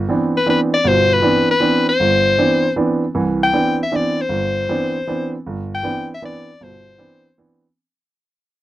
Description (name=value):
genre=jazz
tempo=156 BPM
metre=3/4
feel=swing 66% on 8ths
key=C major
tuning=A4 = 440 Hz
part: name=warm grand piano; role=accompaniment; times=0.0-7.6 s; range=G1 to D4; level=-18 LUFS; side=right 2 dB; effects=none
part: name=edgy soprano saxophone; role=melody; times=0.4-7.4 s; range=B4 to G5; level=-17 LUFS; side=left 3 dB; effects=none
room=light reverb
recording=dry, close 1970s-style studio recording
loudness=-15 LUFS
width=side -14 dB against mid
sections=0.0-3.1 A section; 3.1-7.8 B section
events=fade-out 3.1-7.8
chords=0.0 Cmaj9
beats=0.08 0.46 | 0.84 1.23 1.61 | 1.99 2.38 2.76 | 3.15 3.53 3.91 | 4.30 4.68 5.07 | 5.45 5.84 6.22 | 6.61 6.99 7.38